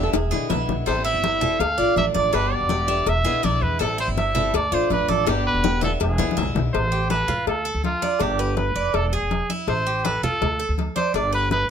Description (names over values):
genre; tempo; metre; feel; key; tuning
latin, Cuban son and guajira; 163 BPM; 4/4; straight; A minor; A4 = 437 Hz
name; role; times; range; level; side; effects
flamenco guitar; second line; 0.0-0.8 s; G#4 to B4; -30 LUFS; right 5 dB; none
picked steel-string acoustic guitar; accompaniment; 0.0-6.7 s; B2 to G4; -27 LUFS; left 6 dB; none
Cuban tres; arpeggios; 0.0-11.7 s; D4 to E5; -27 LUFS; right 8 dB; none
upright bass; bass; 0.0-11.7 s; E1 to E2; -25 LUFS; equal; none
congas; percussion; 0.1-11.7 s; none; -29 LUFS; left 2 dB; none
cowbell and bongos; percussion; 0.1-11.7 s; none; -28 LUFS; left 9 dB; none
warm trumpet; melody; 0.9-11.7 s; F4 to F5; -24 LUFS; right 1 dB; none
room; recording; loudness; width
little or no reverb; close, detailed microphones; -19 LUFS; side -8 dB against mid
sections
0.0-6.7 A section; 6.7-11.7 B section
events
drum fill 0.0-0.9, 5.3-6.7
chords
0.1 E7; 0.9 Am7; 1.6 Dm; 2.3 G; 3.1 E7; 3.8 Am7; 4.5 Dm; 5.3 G; 6.0 E7; 6.7 Am7; 7.5 Dm; 8.2 G; 8.9 E7; 9.7 Am7; 10.4 Dm; 11.1 G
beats
0.13 0.50 | 0.86 1.23 1.60 1.97 | 2.33 2.70 3.07 3.44 | 3.80 4.17 4.54 4.90 | 5.27 5.64 6.00 6.37 | 6.74 7.10 7.47 7.84 | 8.21 8.57 8.94 9.31 | 9.67 10.04 10.41 10.78 | 11.14 11.51